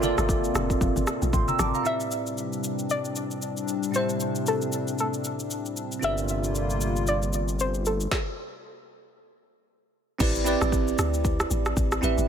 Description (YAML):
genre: amapiano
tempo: 115 BPM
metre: 4/4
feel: swing 58% on 16ths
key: A phrygian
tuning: A4 = 440 Hz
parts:
  - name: bell-like tine electric piano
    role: accompaniment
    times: 0.0-12.3 s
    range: A2 to E6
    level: -29 LUFS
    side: right 3 dB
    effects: wide subtle chorus
  - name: hollow soft pad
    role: sustained chords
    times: 0.0-8.1 s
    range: C3 to F4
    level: -31 LUFS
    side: left 2 dB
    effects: chorus
  - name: deep log drum bass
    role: bass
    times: 0.0-1.7, 10.2-12.3 s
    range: F1 to D2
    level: -27 LUFS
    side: equal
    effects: none
  - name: deep house drum kit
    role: drums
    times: 0.0-12.3 s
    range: crash cymbal, kick drum, rim click, shaker, snare drum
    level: -29 LUFS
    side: equal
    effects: none
  - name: congas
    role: percussion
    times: 0.0-1.7 s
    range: none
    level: -34 LUFS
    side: left 4 dB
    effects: analog delay
  - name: soft round pluck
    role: melody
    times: 1.9-9.6 s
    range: A4 to E5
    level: -30 LUFS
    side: left 1 dB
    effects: chorus, analog delay
  - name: fat analog bass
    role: bass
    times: 6.0-8.1 s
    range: G1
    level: -28 LUFS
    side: equal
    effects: none
room: light reverb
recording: echo-heavy mix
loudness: -24 LUFS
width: side -8 dB against mid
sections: 0.0-1.9 A section; 1.9-10.2 B section; 10.2-12.3 A section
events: drop 0.0-1.9, 10.2-12.3; stop 8.1-10.2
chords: 0.0 Gm11; 1.9 Am11; 6.0 Gm11; 10.2 Am11